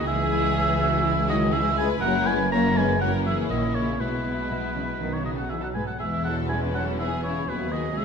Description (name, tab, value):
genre	quick classical-period movement for symphony orchestra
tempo	122 BPM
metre	4/4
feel	straight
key	E major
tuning	A4 = 443 Hz
part	warm studio violin section	melody	0.0-8.0 s	D#4 to G#4	-36 LUFS	left 6 dB	none
part	rich studio violin section	second line	0.0-8.0 s	E4 to C#5	-33 LUFS	left 3 dB	none
part	warm oboe	second line	0.0-8.0 s	B4 to A#5	-27 LUFS	right 1 dB	none
part	rich studio viola section	accompaniment	0.0-8.0 s	E3 to F#4	-31 LUFS	left 1 dB	none
part	dark studio cello section	bass	0.0-8.0 s	C#2 to D#3	-31 LUFS	right 1 dB	none
part	rich studio double bass section	bass	0.0-8.0 s	E1 to D#2	-30 LUFS	right 4 dB	none
part	warm French horn section	sustained chords	0.1-8.0 s	B2 to A#3	-30 LUFS	left 6 dB	none
room	wet scoring stage reverb, RT60 1.5 s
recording	minimal, uncompressed stereo recording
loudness	-22 LUFS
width	side -6 dB against mid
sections	0.0-8.0 A section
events	none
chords	0.1 C#m; 2.0 F#7; 4.0 E/B; 5.0 B; 6.0 E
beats	| 0.06 0.55 1.04 1.53 | 2.02 2.51 3.00 3.49 | 3.99 4.49 5.00 5.50 | 6.00 6.49 6.99 7.48 | 7.97